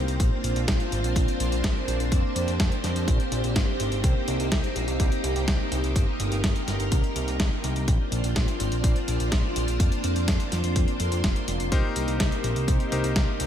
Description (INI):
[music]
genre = italo disco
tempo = 125 BPM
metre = 4/4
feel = straight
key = unclear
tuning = A4 = 440 Hz
[part]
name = string machine, full ensemble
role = sustained chords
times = 0.0-13.5 s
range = Bb3 to C5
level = -29 LUFS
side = equal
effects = ensemble chorus
[part]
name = fat analog bass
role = bass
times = 0.0-13.5 s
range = F1 to F2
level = -28 LUFS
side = equal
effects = tube saturation
[part]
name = dusty soul sampler-style drum kit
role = drums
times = 0.1-13.5 s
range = hi-hat, snare drum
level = -31 LUFS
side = equal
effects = studio reverb, gated reverb
[part]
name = electronic kick drum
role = drums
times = 0.2-13.3 s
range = none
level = -25 LUFS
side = equal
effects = studio reverb
[part]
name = bright electric grand piano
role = stabs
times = 11.7-13.5 s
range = Eb4 to C5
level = -31 LUFS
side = left 4 dB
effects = ping-pong delay
[sound]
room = little or no reverb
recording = none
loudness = -22 LUFS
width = side -10 dB against mid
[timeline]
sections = 0.0-13.5 A section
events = none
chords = 0.2 Bbadd9; 4.0 Cm7; 7.9 Bbadd9; 11.7 Cm7